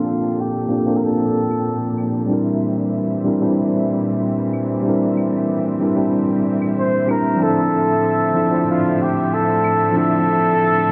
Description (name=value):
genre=sunset chillout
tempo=94 BPM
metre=4/4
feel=straight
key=unclear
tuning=A4 = 439 Hz
part: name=warm flugelhorn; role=melody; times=0.0-2.0, 6.8-10.9 s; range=F4 to C5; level=-22 LUFS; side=equal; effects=digital delay
part: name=tine electric piano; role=accompaniment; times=0.0-10.9 s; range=F3 to C5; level=-21 LUFS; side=equal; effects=overdrive, low-pass filter, digital delay
part: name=clear studio string section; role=sustained chords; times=0.0-10.9 s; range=A2 to E5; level=-27 LUFS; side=equal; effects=none
part: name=claves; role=drums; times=1.5-9.8 s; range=none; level=-40 LUFS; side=equal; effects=overdrive, low-pass filter on hats, low-pass filter on perc
room=moderate plate reverb, RT60 2.6 s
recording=bright 1980s-style digital production, low-pass filter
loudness=-18 LUFS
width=mono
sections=0.0-10.9 A section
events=filter sweep on tine electric piano 0.0-10.9; filter sweep 0.0-10.9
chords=0.0 Bbmaj7; 2.3 C7; 7.4 Dm9